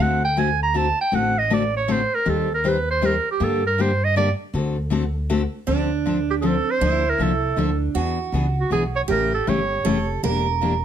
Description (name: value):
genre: acoustic string swing (jazz manouche)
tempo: 158 BPM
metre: 3/4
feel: swing 63% on 8ths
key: unclear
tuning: A4 = 440 Hz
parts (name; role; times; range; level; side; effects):
- clear clarinet; melody; 0.0-10.1 s; F#4 to Bb5; -22 LUFS; right 4 dB; none
- picked steel-string acoustic guitar; accompaniment; 0.0-10.7 s; C#3 to C5; -24 LUFS; left 5 dB; none
- upright bass; bass; 0.0-10.8 s; E1 to G2; -25 LUFS; equal; none
- picked steel-string acoustic guitar; second line; 5.7-10.8 s; D4 to Bb4; -25 LUFS; right 8 dB; none
room: light reverb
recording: none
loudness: -19 LUFS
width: side -9 dB against mid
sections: 0.0-5.7 A section; 5.7-10.8 B section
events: clarinet solo 0.0-5.7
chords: 0.0 D7; 2.3 Eb6; 3.4 Gm; 4.5 D7; 5.7 Dm7; 6.8 Bbmaj7; 8.0 E7; 9.1 A7; 10.2 Em7b5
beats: | 0.00 0.37 0.75 | 1.13 1.51 1.89 | 2.27 2.65 3.02 | 3.40 3.78 4.16 | 4.54 4.92 5.30 | 5.67 6.05 6.43 | 6.81 7.19 7.57 | 7.95 8.33 8.71 | 9.09 9.47 9.86 | 10.23 10.62